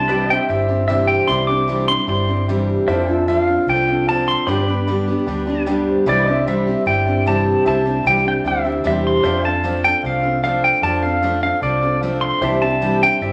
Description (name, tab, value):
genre	honky-tonk and classic country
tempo	151 BPM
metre	4/4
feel	straight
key	C major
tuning	A4 = 440 Hz
part	pedal steel guitar	melody	0.0-13.3 s	D5 to D6	-21 LUFS	equal	none
part	picked steel-string acoustic guitar	accompaniment	0.0-13.3 s	G2 to A4	-23 LUFS	equal	none
part	vintage muted fingered electric bass	bass	0.0-13.3 s	G1 to G2	-26 LUFS	equal	none
part	bright concert grand piano	accompaniment	0.1-13.3 s	D4 to B5	-28 LUFS	equal	none
part	pedal steel guitar	sustained chords	0.1-13.3 s	F4 to A5	-27 LUFS	equal	none
room	wet large studio reverb, RT60 0.8 s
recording	vinyl crackle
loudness	-18 LUFS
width	mono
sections	0.0-6.1 A section; 6.1-13.3 A section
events	grand piano fill 5.3-6.1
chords	0.0 Cadd9; 2.9 F6; 4.5 G; 6.1 Cadd9; 9.2 F6; 12.4 Cadd9